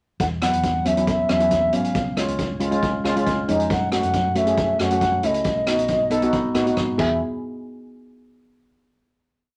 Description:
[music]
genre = calypso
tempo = 137 BPM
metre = 4/4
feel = straight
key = E major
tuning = A4 = 440 Hz
[part]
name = reedy bass bansuri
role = melody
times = 0.2-7.2 s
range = C#5 to F#5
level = -24 LUFS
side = equal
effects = none
[part]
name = hollow-body short-scale fingered electric bass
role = bass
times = 0.2-7.2 s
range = B1 to A2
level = -32 LUFS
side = equal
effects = none
[part]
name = street-band drum kit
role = drums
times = 0.2-7.1 s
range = crash cymbal, hi-hat, kick drum, rim click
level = -29 LUFS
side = equal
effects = none
[part]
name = steel pan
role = accompaniment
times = 0.4-7.2 s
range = F#3 to A4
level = -25 LUFS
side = equal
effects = none
[sound]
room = wet studio ambience, RT60 0.5 s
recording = none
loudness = -21 LUFS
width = mono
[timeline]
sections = 0.2-7.2 verse; 7.2-9.0 final hit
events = drum fill 7.0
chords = 0.2 Esus2; 1.9 C#; 3.7 F#m; 5.5 B; 7.0 E; 7.2 N.C.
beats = | 0.19 0.63 1.07 1.51 | 1.95 2.39 2.83 3.26 | 3.70 4.14 4.58 5.01 | 5.45 5.89 6.33 6.77

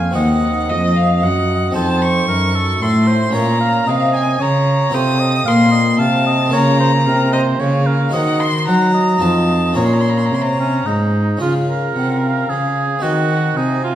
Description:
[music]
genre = classical, baroque-style sonata movement with continuo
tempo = 112 BPM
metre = 3/4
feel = straight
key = Bb minor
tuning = A4 = 440 Hz
[part]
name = rich violin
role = melody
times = 0.0-13.9 s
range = Eb5 to Eb6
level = -20 LUFS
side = left 3 dB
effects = none
[part]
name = warm oboe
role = second line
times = 0.0-13.9 s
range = Db4 to Gb5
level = -20 LUFS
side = right 4 dB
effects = none
[part]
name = harpsichord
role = accompaniment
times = 0.0-13.9 s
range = Eb2 to Db5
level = -20 LUFS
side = left 2 dB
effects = none
[part]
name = dark cello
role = bass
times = 0.0-13.9 s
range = Eb2 to Gb3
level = -18 LUFS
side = right 1 dB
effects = none
[sound]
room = wet recital hall reverb, RT60 1.6 s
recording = none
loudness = -13 LUFS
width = side -11 dB against mid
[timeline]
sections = 0.0-11.4 A section; 11.4-13.9 A section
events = none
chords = 0.2 Cdim/Eb; 1.8 F7; 3.3 Bbm; 4.9 F7; 6.5 Bbm; 8.1 Cdim/Eb; 9.2 F7; 9.8 Bbm; 13.0 Cdim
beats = | 0.15 0.69 1.22 | 1.75 2.29 2.81 | 3.35 3.88 4.41 | 4.94 5.47 6.00 | 6.53 7.07 7.60 | 8.14 8.67 9.22 | 9.77 10.32 10.86 | 11.41 11.96 12.50 | 13.03 13.57

